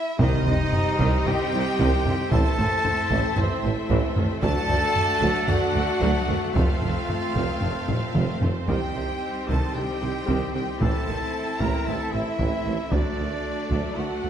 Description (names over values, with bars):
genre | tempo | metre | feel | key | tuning
cinematic, epic orchestral film score | 114 BPM | 4/4 | straight | unclear | A4 = 438 Hz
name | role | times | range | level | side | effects
rich symphonic violin section | melody | 0.0-14.3 s | C5 to Bb5 | -33 LUFS | left 2 dB | none
dark trumpet section | stabs | 0.0-14.3 s | C4 to Bb4 | -28 LUFS | right 1 dB | none
rich symphonic violin section | second line | 0.2-14.3 s | A3 to E4 | -34 LUFS | left 3 dB | none
warm studio viola section | accompaniment | 0.2-14.3 s | D3 to A3 | -32 LUFS | equal | none
clear symphonic string section | sustained chords | 0.2-14.3 s | A3 to F#5 | -34 LUFS | equal | none
dark French horn section | sustained chords | 0.2-14.3 s | A3 to G4 | -36 LUFS | left 3 dB | none
clear symphonic double bass section | bass | 0.2-14.3 s | F1 to D2 | -32 LUFS | right 3 dB | none
warm symphonic cello section | bass | 0.2-14.3 s | D2 to C3 | -31 LUFS | right 3 dB | none
warm tuba | bass | 0.2-14.3 s | F1 to D2 | -32 LUFS | right 4 dB | none
taiko ensemble | drums | 0.2-14.2 s | none | -26 LUFS | equal | none
timpani | percussion | 0.2-1.0 s | C3 | -28 LUFS | left 1 dB | none
impact | sound effects | 0.3-2.3 s | none | -35 LUFS | equal | none
room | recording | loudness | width
moderate scoring stage reverb, RT60 1.7 s | none | -21 LUFS | side -9 dB against mid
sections
0.2-14.3 A section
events
break 0.0; drum fill 0.0, 7.9-8.7; impact 0.2-2.3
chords
0.2 Cm; 2.3 Am; 4.4 D; 6.5 F; 8.7 Cm; 10.8 Am; 12.9 D